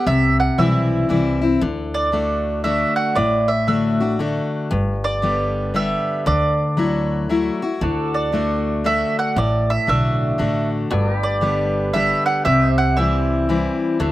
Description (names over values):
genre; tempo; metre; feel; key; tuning
country; 116 BPM; 3/4; swing 64% on 8ths; D mixolydian; A4 = 444 Hz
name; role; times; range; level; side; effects
mandolin; melody; 0.0-13.8 s; D5 to F#5; -21 LUFS; right 3 dB; none
picked steel-string acoustic guitar; accompaniment; 0.0-14.1 s; G2 to G4; -20 LUFS; left 2 dB; none
upright bass; bass; 0.1-14.1 s; G1 to D2; -24 LUFS; equal; none
pedal steel guitar; sustained chords; 7.8-14.1 s; F#4 to E5; -29 LUFS; right 1 dB; wide subtle chorus
room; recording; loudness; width
little or no reverb; recorded outdoors, with no room sound; -17 LUFS; side -15 dB against mid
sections
0.0-7.8 A section; 7.8-14.1 A section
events
none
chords
0.1 C; 1.6 D; 4.7 G; 6.3 Dadd9; 7.8 D; 10.9 G; 12.5 C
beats
| 0.07 0.58 1.10 | 1.62 2.13 2.65 | 3.17 3.69 4.20 | 4.72 5.23 5.75 | 6.27 6.78 7.30 | 7.82 8.33 8.85 | 9.36 9.88 10.39 | 10.91 11.43 11.94 | 12.46 12.97 13.49 | 14.00